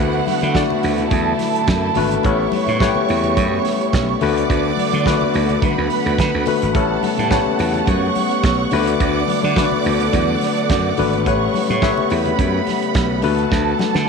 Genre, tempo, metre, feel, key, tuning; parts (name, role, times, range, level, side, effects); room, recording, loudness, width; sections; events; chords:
disco; 106 BPM; 4/4; straight; D major; A4 = 440 Hz
warm studio violin section; second line; 0.0-14.1 s; F#4 to D6; -22 LUFS; right 15 dB
tine electric piano; accompaniment; 0.0-14.1 s; D3 to G5; -20 LUFS; left 10 dB; medium stereo tremolo
rich studio string section; sustained chords; 0.0-14.1 s; C#3 to F#5; -25 LUFS; equal
slap bass; bass; 0.0-14.1 s; G#1 to D3; -21 LUFS; right 2 dB
warm soul drum kit; drums; 0.3-14.1 s; hi-hat, kick drum, snare drum; -22 LUFS; right 3 dB
congas; percussion; 0.3-14.1 s; -29 LUFS; left 8 dB
moderate echo chamber reverb, RT60 1.6 s, small room ambience; 1960s-style stereo with parts hard left and right; -15 LUFS; side -5 dB against mid
0.0-14.1 A section
drum fill 13.5-14.1
0.0 D6; 2.2 A13; 4.2 D6; 6.8 A13; 8.7 D6; 11.3 A13; 13.2 D6